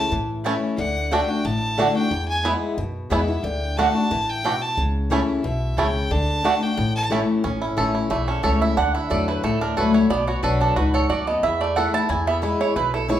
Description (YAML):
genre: bluegrass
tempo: 180 BPM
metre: 4/4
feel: straight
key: A major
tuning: A4 = 440 Hz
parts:
  - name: clear fiddle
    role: melody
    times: 0.0-7.0 s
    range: E5 to A5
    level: -26 LUFS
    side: equal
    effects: none
  - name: picked old ladder-braced acoustic guitar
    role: accompaniment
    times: 0.0-13.2 s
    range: E2 to F#4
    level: -24 LUFS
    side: left 3 dB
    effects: none
  - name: upright bass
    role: bass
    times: 0.1-13.2 s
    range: A1 to A2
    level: -26 LUFS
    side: equal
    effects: none
  - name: mandolin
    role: stabs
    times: 0.4-13.2 s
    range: A3 to A5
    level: -25 LUFS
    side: right 5 dB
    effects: none
  - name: bluegrass banjo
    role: arpeggios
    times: 0.5-13.2 s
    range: A3 to A4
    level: -25 LUFS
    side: right 2 dB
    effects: none
room: moderate large studio reverb, RT60 0.9 s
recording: band playing live in one room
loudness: -19 LUFS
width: side -11 dB against mid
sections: 0.0-7.4 A section; 7.4-13.2 A section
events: fiddle solo 0.0-7.4; mandolin solo 7.4-13.2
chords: 0.0 A; 0.8 D; 2.1 E; 3.4 D; 4.8 A/C#; 6.1 D; 6.8 A; 8.8 Dadd9; 10.1 Bm; 11.4 Esus4; 12.1 E